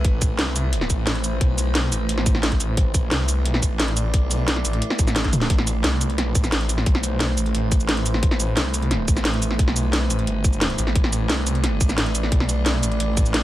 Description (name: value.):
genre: dark technical drum and bass.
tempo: 176 BPM.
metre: 4/4.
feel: straight.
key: A minor.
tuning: A4 = 441 Hz.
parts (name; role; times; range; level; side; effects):
metallic inharmonic drone; sustained chords; 0.0-13.4 s; A3 to D5; -28 LUFS; right 1 dB; chorus, built-in reverb, sidechain pumping.
snarling distorted saw bass; bass; 0.0-13.4 s; G1 to C2; -23 LUFS; equal; distortion, overdrive, sidechain pumping.
drum and bass drum kit; drums; 0.0-13.4 s; cabasa, hi-hat, snare drum, toms; -23 LUFS; equal; none.
electronic kick drum; drums; 0.0-13.2 s; none; -19 LUFS; equal; none.
room: little or no reverb.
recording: none.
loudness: -18 LUFS.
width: side -15 dB against mid.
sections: 0.0-5.5 A section; 5.5-13.4 A section.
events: drop 0.0-5.5, 5.5-13.4; drum fill 5.2.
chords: 0.0 Amadd9.